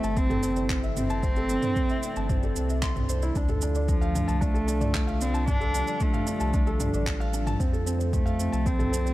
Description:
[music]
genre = piano and strings electronica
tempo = 113 BPM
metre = 4/4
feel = straight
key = D minor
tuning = A4 = 435 Hz
[part]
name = warm cello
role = melody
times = 0.0-9.1 s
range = F3 to D4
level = -31 LUFS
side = equal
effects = none
[part]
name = lush unison pad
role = sustained chords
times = 0.0-9.1 s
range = C3 to A4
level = -36 LUFS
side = equal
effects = chorus, sidechain pumping
[part]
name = felt-muted upright piano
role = riff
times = 0.0-9.1 s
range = C4 to C6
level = -31 LUFS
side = right 1 dB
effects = digital delay
[part]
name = warm sub bass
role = bass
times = 0.0-9.1 s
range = G1 to F2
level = -29 LUFS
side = equal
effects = sidechain pumping
[part]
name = deep house drum kit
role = drums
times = 0.0-9.1 s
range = handclaps, shaker, toms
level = -33 LUFS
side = right 1 dB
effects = overdrive
[part]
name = electronic kick drum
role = drums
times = 0.2-8.8 s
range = none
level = -27 LUFS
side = equal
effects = overdrive
[sound]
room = little or no reverb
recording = none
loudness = -23 LUFS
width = side -16 dB against mid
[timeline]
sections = 0.0-9.1 A section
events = none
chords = 0.0 Am; 3.4 Dm; 7.6 F

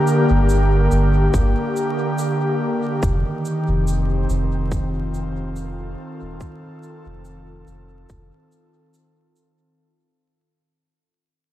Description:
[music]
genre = ambient dub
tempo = 71 BPM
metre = 4/4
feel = swing 55% on 16ths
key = unclear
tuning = A4 = 442 Hz
[part]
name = airy breathy pad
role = sustained chords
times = 0.0-9.8 s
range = D3 to Bb4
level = -21 LUFS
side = equal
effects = chorus
[part]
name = shaker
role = drums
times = 0.1-9.5 s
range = none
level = -40 LUFS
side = right 2 dB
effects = dub echo
[part]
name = soft dub sub bass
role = bass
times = 0.3-8.3 s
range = Eb1 to G1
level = -20 LUFS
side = equal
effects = none
[part]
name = electronic kick drum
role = drums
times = 1.3-8.3 s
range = none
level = -25 LUFS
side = equal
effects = none
[sound]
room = light reverb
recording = dark, warm production, vinyl crackle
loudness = -17 LUFS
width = side -13 dB against mid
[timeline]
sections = 0.0-9.8 A section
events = fade-out 0.0-9.8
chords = 0.0 Gm; 3.0 F7

